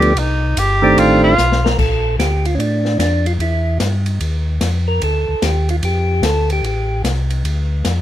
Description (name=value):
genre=soul jazz organ trio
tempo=148 BPM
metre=4/4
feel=swing 65% on 8ths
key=Bb major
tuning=A4 = 439 Hz
part: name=percussive tonewheel organ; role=melody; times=0.0-7.0 s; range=Eb3 to Bb4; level=-17 LUFS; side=right 1 dB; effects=slow rotary speaker, plate reverb
part: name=warm tenor saxophone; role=melody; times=0.0-1.7 s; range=Eb4 to G4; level=-16 LUFS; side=right 1 dB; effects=plate reverb
part: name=mellow tonewheel organ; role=bass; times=0.0-8.0 s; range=G1 to A2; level=-17 LUFS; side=equal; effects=overdrive, chorus vibrato, slow rotary speaker
part: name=open jazz drum kit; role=drums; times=0.0-8.0 s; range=crash cymbal, hi-hat, kick drum, ride cymbal, snare drum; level=-23 LUFS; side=left 2 dB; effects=none
room=light reverb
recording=none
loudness=-14 LUFS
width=side -12 dB against mid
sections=0.0-1.8 A section; 1.8-8.0 B section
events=tenor saxophone solo 0.0-1.8; drum fill 1.4-1.8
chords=0.2 Cm; 1.0 F13; 1.8 Bbmaj7; 3.4 Em; 4.2 Ebsus2; 5.0 Dm; 6.6 Am7; 7.4 Dm